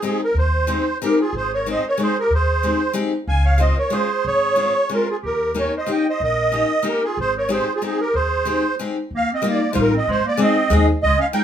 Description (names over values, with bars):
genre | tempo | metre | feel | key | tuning
musette waltz | 186 BPM | 3/4 | straight | Ab major | A4 = 440 Hz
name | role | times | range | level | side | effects
musette accordion | melody | 0.0-11.4 s | Ab4 to Ab5 | -20 LUFS | right 2 dB | none
picked steel-string acoustic guitar | accompaniment | 0.0-11.4 s | G3 to Ab4 | -22 LUFS | left 4 dB | none
upright bass | bass | 0.3-11.1 s | Ab1 to Eb2 | -21 LUFS | equal | none
clear clarinet | second line | 1.0-11.4 s | G3 to F5 | -27 LUFS | right 2 dB | none
room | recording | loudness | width
wet studio reverb, RT60 0.6 s | band playing live in one room | -17 LUFS | side -9 dB against mid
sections
0.0-1.3 A section; 1.3-9.1 A section; 9.1-11.4 B section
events
none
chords
0.0 Abmaj7; 3.3 Dbmaj7; 5.2 Eb7; 7.2 Abmaj7; 9.1 Ebadd9; 10.1 Ab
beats
0.02 | 0.34 0.67 1.00 | 1.32 1.65 1.98 | 2.30 2.62 2.94 | 3.27 3.59 3.92 | 4.24 4.57 4.89 | 5.22 5.55 5.87 | 6.20 6.52 6.84 | 7.16 7.49 7.81 | 8.13 8.45 8.78 | 9.11 9.43 9.75 | 10.07 10.38 10.70 | 11.02 11.34